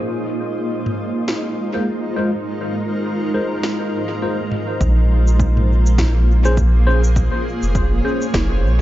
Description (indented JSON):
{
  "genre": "ambient dub",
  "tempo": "102 BPM",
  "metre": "4/4",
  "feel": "swing 58% on 16ths",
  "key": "Bb minor",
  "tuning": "A4 = 440 Hz",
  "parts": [
    { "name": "granular cloud pad", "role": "sustained chords", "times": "0.0-8.8 s", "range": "Ab3 to Db5", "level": "-23 LUFS", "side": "equal", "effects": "built-in reverb, vintage 12-bit sampler grit" },
    { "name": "wind-like tuned noise texture", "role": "texture", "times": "0.0-4.8 s", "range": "Eb4 to Eb5", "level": "-33 LUFS", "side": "right 1 dB", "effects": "built-in reverb" },
    { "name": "organic electronic drum kit", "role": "drums", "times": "0.9-8.5 s", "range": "shaker, snare drum, toms", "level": "-27 LUFS", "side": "equal", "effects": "dub echo" },
    { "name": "tine electric piano", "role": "stabs", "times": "1.7-8.3 s", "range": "Ab3 to C5", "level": "-25 LUFS", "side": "left 1 dB", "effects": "phaser, dub echo" },
    { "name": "warm sub bass", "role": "bass", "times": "4.8-8.8 s", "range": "F1 to Bb1", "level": "-14 LUFS", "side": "equal", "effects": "none" },
    { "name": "electronic kick drum", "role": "drums", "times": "4.8-8.5 s", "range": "none", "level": "-22 LUFS", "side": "equal", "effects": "overdrive" }
  ],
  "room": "light reverb",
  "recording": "nothing above 7.6 kHz",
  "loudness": "-16 LUFS",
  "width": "side -14 dB against mid",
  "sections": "0.0-4.8 A section; 4.8-8.8 B section",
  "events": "filter sweep on ambient pad 0.0-4.8; filter sweep on tine electric piano 0.0-4.8",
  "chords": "0.1 Ab6; 4.8 Bbm7",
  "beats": "| 0.10 0.69 1.28 1.87 | 2.46 3.04 3.63 4.22 | 4.81 5.40 5.99 6.57 | 7.16 7.75 8.34"
}